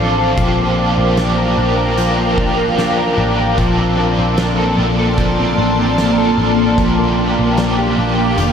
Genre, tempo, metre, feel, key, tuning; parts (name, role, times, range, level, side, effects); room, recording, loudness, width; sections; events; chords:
dream pop; 75 BPM; 4/4; straight; A4 = 440 Hz
biting overdriven guitar; accompaniment; 0.0-8.5 s; Bb2 to A4; -20 LUFS; right 1 dB; tremolo, ensemble chorus
granular cloud pad; sustained chords; 0.0-8.5 s; Bb3 to Eb6; -17 LUFS; equal; built-in reverb
clean electric guitar; arpeggios; 0.0-8.5 s; Eb3 to Bb4; -18 LUFS; left 2 dB; ensemble chorus, analog delay
vintage muted picked electric bass; bass; 0.0-8.5 s; F1 to Bb1; -20 LUFS; equal
oversized low-tuned drum kit; drums; 0.4-8.5 s; hi-hat, kick drum, snare drum; -23 LUFS; equal
wet huge ambient reverb, RT60 7.7 s; dreamy mix soaked in reverb; -12 LUFS; side -7 dB against mid
0.0-8.5 A section
0.4 Gm7/Bb; 3.6 Bbmaj9; 6.8 Gm7/Bb